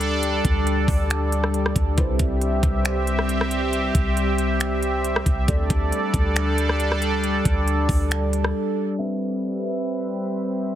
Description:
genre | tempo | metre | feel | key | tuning
hip hop, atmospheric cloud-rap | 137 BPM | 4/4 | half-time | C major | A4 = 440 Hz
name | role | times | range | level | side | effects
sweeping resonant pad | sustained chords | 0.0-10.8 s | G3 to E5 | -23 LUFS | equal | chorus, sidechain pumping
soft 808-style bass | bass | 0.0-8.5 s | C2 to D2 | -24 LUFS | equal | none
trap drum kit | drums | 0.0-8.5 s | finger snaps, hi-hat, kick drum, rim click | -24 LUFS | equal | none
felt-muted upright piano | texture | 0.0-10.8 s | A3 to E5 | -37 LUFS | left 1 dB | none
room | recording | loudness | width
little or no reverb | heavily compressed radio sound, multiband compression, low-pass filter | -20 LUFS | side -11 dB against mid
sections
0.0-9.0 A section; 9.0-10.8 B section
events
break 8.5-9.0; filter sweep 9.0-10.8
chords
0.0 Dsus4; 2.0 Cmaj7; 5.5 Dsus4; 9.0 Cmaj7

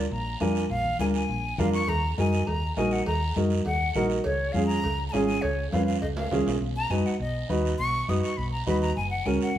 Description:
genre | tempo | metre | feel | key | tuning
latin, cumbia | 203 BPM | 4/4 | straight | unclear | A4 = 440 Hz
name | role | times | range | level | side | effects
breathy bright jazz flute | melody | 0.0-9.6 s | Db5 to D#6 | -30 LUFS | left 1 dB | none
warm upright piano | accompaniment | 0.0-9.5 s | Db4 to Cb5 | -29 LUFS | right 3 dB | none
hollow-body short-scale fingered electric bass | bass | 0.0-9.6 s | Gb1 to Gb2 | -29 LUFS | equal | none
congas | percussion | 0.1-9.6 s | none | -30 LUFS | left 3 dB | none
guiro | percussion | 0.1-9.6 s | none | -42 LUFS | right 5 dB | none
cowbell and timbales | percussion | 1.9-6.5 s | none | -37 LUFS | right 2 dB | none
room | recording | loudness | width
wet large studio reverb, RT60 1.2 s | band playing live in one room | -24 LUFS | side -11 dB against mid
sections
0.0-6.6 A section; 6.6-9.6 B section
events
drum fill 5.7-6.6; flute solo 6.6-9.6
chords
0.0 Bb; 1.9 Ebm; 4.2 Db; 6.6 B; 9.0 Gb

